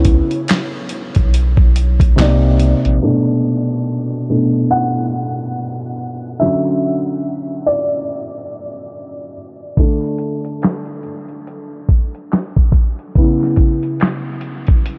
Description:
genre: lo-fi hip hop.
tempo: 71 BPM.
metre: 4/4.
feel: swing 59% on 16ths.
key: unclear.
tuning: A4 = 438 Hz.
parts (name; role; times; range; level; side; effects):
felt-muted upright piano; accompaniment; 0.0-15.0 s; B2 to F#5; -20 LUFS; equal; cassette tape.
soft dub sub bass; bass; 0.0-3.0 s; Bb1 to C#2; -16 LUFS; equal; none.
dusty soul sampler-style drum kit; drums; 0.0-3.0, 9.8-15.0 s; handclaps, hi-hat, kick drum, snare drum; -17 LUFS; equal; overdrive.
room: light reverb.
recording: low-pass filter.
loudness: -16 LUFS.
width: mono.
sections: 0.0-3.0 A section; 3.0-15.0 B section.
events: felt piano solo 3.0-15.0; filter sweep 3.0-15.0.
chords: 0.0 C#m7; 2.2 Cm9; 3.0 Bm7; 6.4 Dmaj9; 9.8 D5; 13.2 C#m7.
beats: 0.48 1.32 2.17 | 3.01 3.86 4.70 5.55 | 6.39 7.24 8.08 8.93 | 9.77 10.62 11.46 12.31 | 13.15 14.00 14.85.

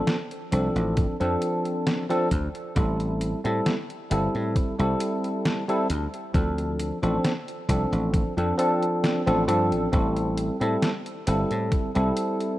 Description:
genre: vaporwave.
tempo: 67 BPM.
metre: 4/4.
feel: straight.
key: A minor.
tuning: A4 = 440 Hz.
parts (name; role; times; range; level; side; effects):
bell-like tine electric piano; accompaniment; 0.0-12.6 s; F3 to A4; -25 LUFS; equal; analog chorus, analog delay.
detuned 8-bit digital drum machine; drums; 0.1-12.6 s; hi-hat, snare drum; -29 LUFS; equal; studio reverb.
dry thumbed slap bass; bass; 0.5-12.1 s; G1 to A2; -26 LUFS; equal; tube saturation.
electronic kick drum; drums; 1.0-11.9 s; none; -25 LUFS; equal; overdrive, studio reverb.
room: light reverb, digital ambience.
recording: rough home demo mix, cassette tape.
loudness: -22 LUFS.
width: side -15 dB against mid.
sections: 0.0-12.6 A section.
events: kick drops out 9.0-9.9.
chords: 0.0 Dm7; 2.8 Am7; 5.9 Dm7; 9.9 Am7.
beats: 0.08 0.97 1.87 | 2.77 3.66 4.56 5.45 | 6.35 7.24 8.14 9.04 | 9.93 10.83 11.72.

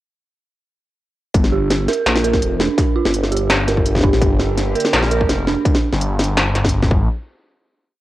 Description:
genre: half-time drum and bass.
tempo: 167 BPM.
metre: 4/4.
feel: half-time.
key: G minor.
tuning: A4 = 438 Hz.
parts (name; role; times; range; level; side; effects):
phased detuned saw bass; bass; 1.3-7.1 s; F1 to Bb1; -19 LUFS; left 1 dB; phaser.
electronic kick drum; drums; 1.3-7.0 s; none; -18 LUFS; left 1 dB; distortion, cassette tape.
industrial drum kit; drums; 1.3-6.9 s; hi-hat, snare drum; -19 LUFS; left 1 dB; cassette tape.
dark detuned synth bell; arpeggios; 1.5-5.8 s; D4 to Bb4; -21 LUFS; right 6 dB; chorus, cassette tape, analog delay.
vibraphone with soft mallets; melody; 4.0-4.4 s; G4; -26 LUFS; left 2 dB; analog delay.
clear symphonic cello section; sustained chords; 4.2-5.7 s; D3 to Bb4; -28 LUFS; left 2 dB; sidechain pumping, cassette tape.
room: light reverb.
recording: home recording on cassette.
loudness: -14 LUFS.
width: side -15 dB against mid.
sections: 1.3-7.1 drop.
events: drop 1.3-7.1.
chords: 1.3 Gm.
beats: | 1.34 1.70 2.06 2.42 | 2.78 3.14 3.50 3.86 | 4.22 4.58 4.93 5.29 | 5.65 6.01 6.37 6.73.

